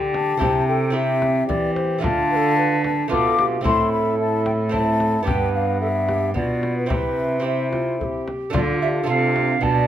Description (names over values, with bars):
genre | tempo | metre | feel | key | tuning
classical, renaissance-style consort dance | 111 BPM | 3/4 | straight | D dorian | A4 = 440 Hz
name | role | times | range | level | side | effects
mellow hollow alto recorder | second line | 0.0-9.9 s | F4 to A5 | -26 LUFS | right 4 dB | none
clear trombone | accompaniment | 0.0-9.9 s | B3 to G4 | -27 LUFS | left 2 dB | none
lute | accompaniment | 0.0-9.9 s | G2 to G4 | -26 LUFS | right 5 dB | none
rich cello | bass | 0.0-9.9 s | G2 to E3 | -24 LUFS | right 1 dB | none
mellow hollow concert flute | melody | 0.1-9.9 s | F4 to D6 | -24 LUFS | left 5 dB | none
frame drum | percussion | 0.1-9.9 s | none | -28 LUFS | left 2 dB | none
room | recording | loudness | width
light reverb | none | -18 LUFS | side -10 dB against mid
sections
0.0-8.5 A section; 8.5-9.9 A section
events
none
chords
0.4 C; 2.0 Dm; 3.6 Am; 5.3 G; 6.9 C; 8.5 Dm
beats
| 0.42 0.95 1.49 | 2.04 2.58 3.11 | 3.65 4.19 4.73 | 5.27 5.81 6.35 | 6.90 7.45 7.99 | 8.54 9.08 9.62